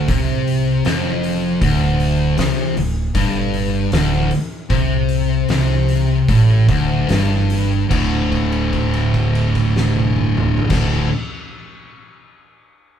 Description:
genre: stoner and doom metal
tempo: 73-78 BPM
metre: 4/4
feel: straight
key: D minor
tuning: A4 = 440 Hz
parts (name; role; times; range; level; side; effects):
- fuzz guitar; riff; 0.0-11.1 s; D2 to D3; -21 LUFS; left 6 dB; distortion
- thick fuzz guitar; riff; 0.0-11.1 s; D2 to D3; -18 LUFS; right 3 dB; distortion
- upright bass; bass; 0.0-11.1 s; D1 to C2; -22 LUFS; left 1 dB; tube saturation
- oversized low-tuned drum kit; drums; 0.1-10.9 s; crash cymbal, hi-hat, kick drum, snare drum, toms; -23 LUFS; equal; none
room: moderate studio ambience, RT60 0.5 s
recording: band playing live in one room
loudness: -15 LUFS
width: side -9 dB against mid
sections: 0.0-7.9 A section; 7.9-11.2 B section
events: slowing down 1.6-7.9; held note 7.9-10.7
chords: 0.0 Dm; 7.9 D5

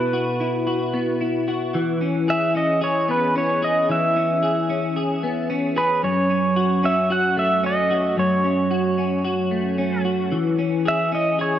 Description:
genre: dream pop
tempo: 112 BPM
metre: 4/4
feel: straight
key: unclear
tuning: A4 = 440 Hz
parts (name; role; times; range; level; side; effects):
- pedal steel guitar; melody; 0.0-11.6 s; B4 to F#5; -22 LUFS; right 1 dB; ping-pong delay
- clean electric guitar; arpeggios; 0.0-11.6 s; F#2 to G#4; -21 LUFS; left 1 dB; analog chorus, ping-pong delay
room: moderate lush hall reverb, RT60 2.8 s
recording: worn, warbling old tape, cassette tape, warbly pitch drift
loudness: -18 LUFS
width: side -10 dB against mid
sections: 0.0-11.6 A section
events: none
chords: 0.0 Bsus4; 1.7 E6; 6.0 F#m; 10.3 E6

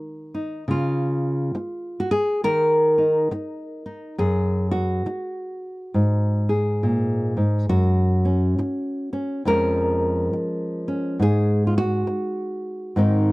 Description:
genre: folk, solo fingerstyle acoustic guitar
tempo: 68 BPM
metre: 4/4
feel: swing 62% on 8ths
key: Db major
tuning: A4 = 440 Hz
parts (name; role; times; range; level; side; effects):
- nylon-string guitar; solo; 0.0-13.3 s; F2 to C5; -20 LUFS; equal; none
room: light reverb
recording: dry, close 1970s-style studio recording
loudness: -20 LUFS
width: side -22 dB against mid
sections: 0.7-13.3 A section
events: none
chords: 0.0 Ab (rootless); 0.7 Db; 2.4 Eb5; 4.2 Gb5; 5.9 Absus2; 7.7 Gb5; 9.4 Db/F; 11.2 N.C.

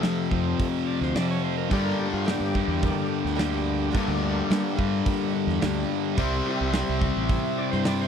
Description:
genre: classic rock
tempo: 108 BPM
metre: 4/4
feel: straight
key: G dorian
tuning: A4 = 440 Hz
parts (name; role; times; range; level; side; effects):
- overdriven tonewheel organ; sustained chords; 0.0-8.1 s; F3 to D5; -32 LUFS; right 1 dB; slow rotary speaker
- crunchy overdriven guitar; riff; 0.0-8.1 s; F2 to C4; -27 LUFS; left 11 dB; none
- tight distorted guitar; riff; 0.0-8.1 s; F2 to C4; -31 LUFS; right 16 dB; distortion
- fuzz fingered electric bass; bass; 0.0-8.1 s; A1 to G3; -29 LUFS; right 1 dB; overdrive
- big rock drum kit; drums; 0.0-8.0 s; hi-hat, kick drum, snare drum; -29 LUFS; right 1 dB; none
- picked twelve-string acoustic guitar; accompaniment; 1.7-8.1 s; G2 to G4; -34 LUFS; right 9 dB; none
room: little or no reverb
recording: dry, close 1970s-style studio recording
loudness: -23 LUFS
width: side -7 dB against mid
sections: 0.0-8.1 A section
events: tonewheel organ solo 0.0-8.1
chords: 0.0 F; 1.7 Gm; 6.2 C

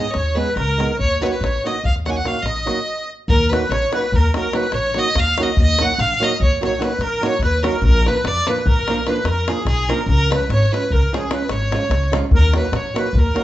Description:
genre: balkan folk, Balkan wedding band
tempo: 292 BPM (eighths)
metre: 11/8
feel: straight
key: Eb minor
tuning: A4 = 440 Hz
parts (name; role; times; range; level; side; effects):
- clear fiddle; melody; 0.0-13.4 s; Ab4 to Ab5; -22 LUFS; equal; none
- accordion; second line; 0.0-13.4 s; Ab4 to Ab5; -25 LUFS; right 1 dB; light tremolo tuning
- flamenco guitar; accompaniment; 0.0-13.4 s; F3 to Ab4; -24 LUFS; right 3 dB; none
- upright bass; bass; 0.1-13.3 s; Ab1 to F2; -20 LUFS; equal; none
- davul; percussion; 0.1-13.4 s; none; -21 LUFS; left 1 dB; none
room: moderate large studio reverb, RT60 0.9 s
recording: band playing live in one room, nothing above 7.9 kHz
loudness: -16 LUFS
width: side -14 dB against mid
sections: 0.0-3.3 A section; 3.3-13.4 B section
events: speeding up 0.0-13.4; stop 2.9-3.3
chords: 0.0 Abm; 1.0 Ebm; 7.8 Bb; 10.1 Db; 12.3 Ebm

